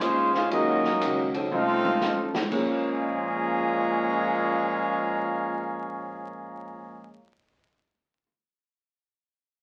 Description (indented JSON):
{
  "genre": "jazz, big band swing",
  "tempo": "120 BPM",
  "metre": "4/4",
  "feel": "swing 66% on 8ths",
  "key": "Bb minor",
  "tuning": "A4 = 439 Hz",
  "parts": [
    { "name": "clear trumpet section", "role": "melody", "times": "0.0-7.2 s", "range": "Db4 to Bb5", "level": "-30 LUFS", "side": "equal", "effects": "none" },
    { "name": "bright trombone section", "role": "second line", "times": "0.0-7.1 s", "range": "Bb2 to F4", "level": "-31 LUFS", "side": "equal", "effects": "none" },
    { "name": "picked acoustic archtop guitar", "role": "accompaniment", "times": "0.0-7.2 s", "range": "Eb3 to C5", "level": "-36 LUFS", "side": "equal", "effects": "none" },
    { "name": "upright bass", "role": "bass", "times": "0.0-7.1 s", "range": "A1 to Ab2", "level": "-49 LUFS", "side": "equal", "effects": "none" },
    { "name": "swinging big-band drum kit", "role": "drums", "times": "0.0-2.7 s", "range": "crash cymbal, hi-hat, kick drum, ride cymbal, snare drum, toms", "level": "-35 LUFS", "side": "equal", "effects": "none" },
    { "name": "warm concert grand piano", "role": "accompaniment", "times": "0.5-8.2 s", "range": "Bb2 to Eb7", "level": "-36 LUFS", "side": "equal", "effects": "none" }
  ],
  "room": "wet club reverb, RT60 0.5 s",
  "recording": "very old 78 rpm record, vinyl crackle",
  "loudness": "-26 LUFS",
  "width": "mono",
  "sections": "0.0-2.5 A section; 2.5-6.5 B section",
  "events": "drum fill 1.5-2.5",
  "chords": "0.0 Bbm9; 0.5 Ebm11; 1.5 F7b13; 2.5 Bbm9",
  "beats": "0.01 | 0.51 1.01 1.51 2.01 | 2.51 3.01 3.51 4.01 | 4.51 5.01 5.51 6.00"
}